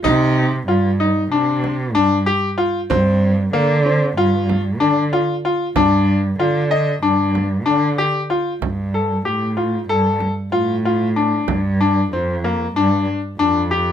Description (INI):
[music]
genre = contemporary instrumental, chamber music in an uneven meter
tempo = 189 BPM (eighths)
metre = 9/8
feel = straight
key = G minor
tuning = A4 = 441 Hz
[part]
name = bright concert grand piano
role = arpeggios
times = 0.0-13.9 s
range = Bb3 to Eb5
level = -18 LUFS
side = left 3 dB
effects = none
[part]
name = dark cello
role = bass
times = 0.0-13.9 s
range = F2 to D3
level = -19 LUFS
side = right 2 dB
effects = none
[part]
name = frame drum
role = percussion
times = 0.0-12.3 s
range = none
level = -24 LUFS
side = right 6 dB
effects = none
[sound]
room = light reverb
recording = close, detailed microphones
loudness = -15 LUFS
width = side -9 dB against mid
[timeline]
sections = 0.0-8.6 A section; 8.6-13.9 B section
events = none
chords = 0.0 Cmadd9; 2.9 G7(no3); 5.8 G5; 8.6 Dm/G (rootless); 11.5 Bb (rootless)